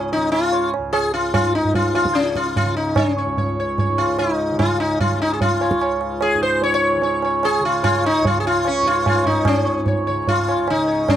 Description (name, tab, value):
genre	indian classical, Hindustani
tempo	148 BPM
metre	4/4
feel	straight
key	Db raga hamsadhwani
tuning	A4 = 441 Hz
part	sitar	melody	0.0-11.2 s	Db4 to Db5	-18 LUFS	left 1 dB	none
part	tanpura	drone	0.0-11.2 s	Db2 to Db3	-27 LUFS	equal	none
part	tabla	percussion	0.1-11.2 s	none	-22 LUFS	right 3 dB	none
room	little or no reverb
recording	dry, close 1970s-style studio recording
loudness	-16 LUFS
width	side -10 dB against mid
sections	0.0-9.5 A section; 9.5-11.2 B section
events	none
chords	none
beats	0.12 0.53 0.94 | 1.35 1.75 2.16 2.57 | 2.98 3.38 3.79 4.20 | 4.60 5.01 5.41 5.82 | 6.23 6.63 7.04 7.44 | 7.85 8.25 8.66 9.06 | 9.47 9.87 10.28 10.68 | 11.08